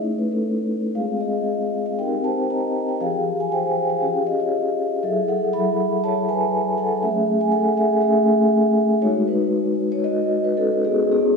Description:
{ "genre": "classical, contemporary piece for solo vibraphone", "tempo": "118 BPM", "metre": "4/4", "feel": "rubato", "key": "unclear", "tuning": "A4 = 440 Hz", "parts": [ { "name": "vibraphone with soft mallets", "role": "solo", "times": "0.0-11.4 s", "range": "F3 to B5", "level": "-18 LUFS", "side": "left 1 dB", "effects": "none" } ], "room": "wet recital hall reverb, RT60 1.4 s", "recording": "recorded in a church or concert hall, studio ambience", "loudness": "-18 LUFS", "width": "side -4 dB against mid", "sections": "0.0-11.4 A section", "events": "none", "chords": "0.0 A; 1.0 G#6; 2.0 Cm7; 3.0 Fmadd9; 4.0 C#; 5.0 F#m11; 7.0 Amaj7; 9.0 G#m7", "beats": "0.44 | 0.95 1.47 1.99 2.50 | 3.00 3.52 4.02 4.53 | 5.03 5.53 6.03 6.53 | 7.03 7.52 8.02 8.52 | 9.03 9.53 10.04 10.58 | 11.12" }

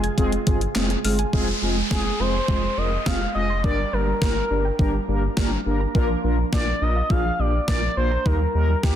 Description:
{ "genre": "synth-pop", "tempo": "104 BPM", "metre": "4/4", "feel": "straight", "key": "F dorian", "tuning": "A4 = 442 Hz", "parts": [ { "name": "expressive synth lead", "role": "melody", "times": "0.0-9.0 s", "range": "G4 to F5", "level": "-26 LUFS", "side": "equal", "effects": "chorus, tape echo" }, { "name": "mellow synth brass", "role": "accompaniment", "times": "0.0-9.0 s", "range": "Ab3 to Bb4", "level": "-26 LUFS", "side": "equal", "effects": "chorus" }, { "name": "brassy analog pad", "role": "sustained chords", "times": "0.0-1.3 s", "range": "C3 to F4", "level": "-37 LUFS", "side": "right 5 dB", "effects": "none" }, { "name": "soft round pluck", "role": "arpeggios", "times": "0.0-9.0 s", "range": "F3 to Ab6", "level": "-32 LUFS", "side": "right 3 dB", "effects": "chorus, tape echo" }, { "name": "round analog bass", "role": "bass", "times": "0.0-9.0 s", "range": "F1 to Eb2", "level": "-24 LUFS", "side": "equal", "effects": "none" }, { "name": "gated 80s digital drum machine", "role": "drums", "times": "0.0-9.0 s", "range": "handclaps, hi-hat, kick drum, snare drum", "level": "-23 LUFS", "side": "equal", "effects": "gated reverb, gated reverb snare, overdrive" }, { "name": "downlifter", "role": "sound effects", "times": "1.3-5.9 s", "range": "none", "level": "-32 LUFS", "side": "equal", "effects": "none" } ], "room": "light reverb", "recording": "dense, heavily limited modern master", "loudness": "-20 LUFS", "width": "side -10 dB against mid", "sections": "0.0-1.3 A section; 1.3-9.0 B section", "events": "none", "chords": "0.0 Fm; 3.6 Gm; 5.9 Bb; 8.3 Eb", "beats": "0.18 0.76 | 1.33 1.91 2.49 3.06 | 3.64 4.22 4.79 5.37 | 5.95 6.53 7.10 7.68 | 8.26 8.83" }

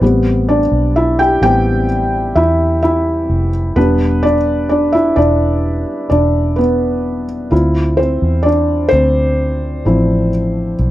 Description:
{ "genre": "pop", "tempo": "64 BPM", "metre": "4/4", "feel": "straight", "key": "unclear", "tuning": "A4 = 440 Hz", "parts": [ { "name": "felt-muted upright piano", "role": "accompaniment", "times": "0.0-10.9 s", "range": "F3 to G5", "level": "-13 LUFS", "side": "equal", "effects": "none" }, { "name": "vintage muted fingered electric bass", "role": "bass", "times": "0.0-10.9 s", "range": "E1 to E2", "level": "-16 LUFS", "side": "equal", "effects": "none" } ], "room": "light reverb", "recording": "dry, close 1970s-style studio recording", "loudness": "-12 LUFS", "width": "side -14 dB against mid", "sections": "0.0-10.9 A section", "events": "felt piano solo 0.0-10.9", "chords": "0.0 Am7; 3.8 Em7; 7.5 Dm7", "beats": "| 0.01 0.95 1.89 2.83 | 3.77 4.70 5.64 6.58 | 7.51 8.45 9.39 10.33" }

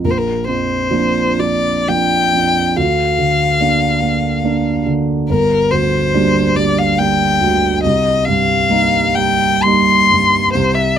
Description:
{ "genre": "classical, romantic duo for violin and grand piano", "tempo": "59-72 BPM", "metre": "3/4", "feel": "rubato", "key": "Bb major", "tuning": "A4 = 440 Hz", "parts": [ { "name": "rich violin", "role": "melody", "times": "0.0-11.0 s", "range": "Bb4 to C6", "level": "-15 LUFS", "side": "left 4 dB", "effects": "none" }, { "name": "dark baby grand piano", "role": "accompaniment", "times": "0.0-11.0 s", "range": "G1 to Eb4", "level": "-15 LUFS", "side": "right 3 dB", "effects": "none" } ], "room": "light reverb", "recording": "close, detailed microphones", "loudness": "-12 LUFS", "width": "side -9 dB against mid", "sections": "0.0-11.0 A section", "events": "none", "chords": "0.0 Bb; 2.8 Bb/D; 5.3 Gm; 7.8 Cm7", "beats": "| 0.04 0.92 1.88 | 2.76 3.60 4.43 | 5.28 6.13 6.99 | 7.83 8.68 9.64 | 10.53" }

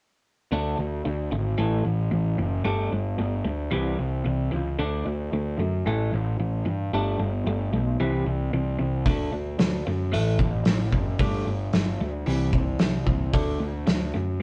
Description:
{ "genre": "quiet-loud alternative rock", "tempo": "112 BPM", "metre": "4/4", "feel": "straight", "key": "unclear", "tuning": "A4 = 440 Hz", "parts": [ { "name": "clean electric guitar", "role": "arpeggios", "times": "0.5-14.4 s", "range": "A2 to D4", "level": "-31 LUFS", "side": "equal", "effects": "phaser" }, { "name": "fuzz picked electric bass", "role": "bass", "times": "0.5-14.4 s", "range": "F#1 to G2", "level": "-29 LUFS", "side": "equal", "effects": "overdrive" }, { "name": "loose indie drum kit", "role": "drums", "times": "9.1-14.0 s", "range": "hi-hat, kick drum, snare drum", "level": "-27 LUFS", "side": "equal", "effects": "vintage 12-bit sampler grit" } ], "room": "moderate stone room reverb, RT60 1.1 s", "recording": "band playing live in one room, cassette tape", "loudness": "-26 LUFS", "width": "mono", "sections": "0.5-14.4 A section", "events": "none", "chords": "0.5 D5; 1.6 A5; 2.7 Gsus2; 3.7 C; 4.8 D; 5.9 A5; 6.9 Gadd9; 8.0 C; 9.1 D; 10.1 A5; 11.2 Gsus2; 12.3 C; 13.3 D", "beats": "| 0.51 1.05 1.58 2.12 | 2.65 3.19 3.72 4.26 | 4.79 5.33 5.86 6.40 | 6.93 7.47 8.00 8.54 | 9.07 9.60 10.14 10.67 | 11.21 11.74 12.28 12.81 | 13.35 13.88 14.42" }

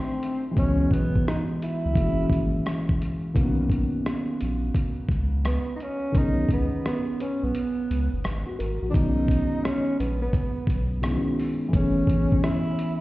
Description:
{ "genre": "lo-fi hip hop", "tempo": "86 BPM", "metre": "4/4", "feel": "swing 64% on 16ths", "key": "B major", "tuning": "A4 = 440 Hz", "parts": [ { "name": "breathy tenor saxophone", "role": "melody", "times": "0.0-13.0 s", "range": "B3 to E4", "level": "-29 LUFS", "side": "right 1 dB", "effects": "analog delay" }, { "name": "felt-muted upright piano", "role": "accompaniment", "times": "0.0-13.0 s", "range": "Eb3 to D#5", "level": "-27 LUFS", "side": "left 1 dB", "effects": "cassette tape" }, { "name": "lo-fi sampler-style drum kit", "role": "drums", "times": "0.2-13.0 s", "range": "hi-hat, kick drum, rim click", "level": "-26 LUFS", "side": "equal", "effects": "vintage 12-bit sampler grit" }, { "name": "warm sub bass", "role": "bass", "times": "0.6-12.3 s", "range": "F#1 to C#2", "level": "-26 LUFS", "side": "equal", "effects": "none" }, { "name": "tube shaker", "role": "percussion", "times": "8.9-13.0 s", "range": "none", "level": "-70 LUFS", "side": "right 5 dB", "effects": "none" } ], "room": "light reverb, small room ambience", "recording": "heard muffled through a wall, stone room reverb, EQ", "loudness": "-22 LUFS", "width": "side -18 dB against mid", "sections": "0.0-8.9 A section; 8.9-13.0 B section", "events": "break 7.5-8.9", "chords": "0.0 Cdim7; 0.6 C#m11; 2.0 F#9; 3.4 Bmaj9; 8.9 B69; 11.7 F#m11", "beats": "| 0.57 1.27 1.96 2.66 | 3.36 4.06 4.75 5.45 | 6.15 6.85 7.54 8.24 | 8.94 9.64 10.34 11.03 | 11.73 12.43" }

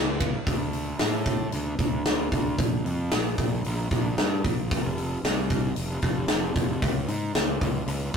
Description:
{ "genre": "quiet-loud alternative rock", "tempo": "114 BPM", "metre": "4/4", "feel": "straight", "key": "D harmonic minor", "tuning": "A4 = 440 Hz", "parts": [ { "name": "fuzz fingered electric bass", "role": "bass", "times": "0.0-8.2 s", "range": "F1 to A2", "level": "-28 LUFS", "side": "equal", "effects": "overdrive" }, { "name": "big rock drum kit", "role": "drums", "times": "0.2-8.2 s", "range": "hi-hat, kick drum, ride cymbal, snare drum", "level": "-26 LUFS", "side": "equal", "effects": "none" } ], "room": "light reverb", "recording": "rough rehearsal-room recording, tube saturation", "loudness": "-24 LUFS", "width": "side -6 dB against mid", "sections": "0.5-8.2 A section", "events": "none", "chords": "none", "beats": "| 0.48 1.01 1.54 2.06 | 2.59 3.12 3.65 4.18 | 4.71 5.24 5.77 6.30 | 6.83 7.35 7.88" }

